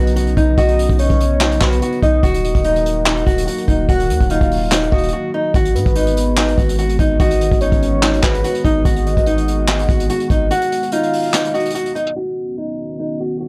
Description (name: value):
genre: hip hop, trap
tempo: 145 BPM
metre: 4/4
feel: half-time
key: unclear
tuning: A4 = 439 Hz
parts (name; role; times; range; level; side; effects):
- nylon-string guitar; melody; 0.0-13.5 s; D#4 to F#4; -22 LUFS; equal; none
- soft octave-layered synth lead; second line; 0.0-11.7 s; B4 to Gb5; -24 LUFS; equal; chorus, phaser, tape echo
- dark analog pad; sustained chords; 0.0-13.5 s; C#3 to Gb4; -28 LUFS; equal; chorus
- long sustained 808-style bass; bass; 0.0-10.5 s; Eb1 to Ab2; -21 LUFS; equal; none
- impact; sound effects; 0.0-0.6 s; none; barely audible; none; none
- vintage brush drum kit; drums; 0.1-12.2 s; handclaps, hi-hat, kick drum, snare drum; -21 LUFS; equal; none
room: small room ambience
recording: dry, gritty hardware recording, low-pass filter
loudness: -16 LUFS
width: mono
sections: 0.0-12.2 A section; 12.2-13.5 B section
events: impact 0.0-0.6; break 5.1-5.5; kick muted 10.5-12.2; filter sweep 12.2-13.5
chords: 0.0 Badd9; 2.2 Ebmadd9; 5.5 Abm7; 12.2 Badd9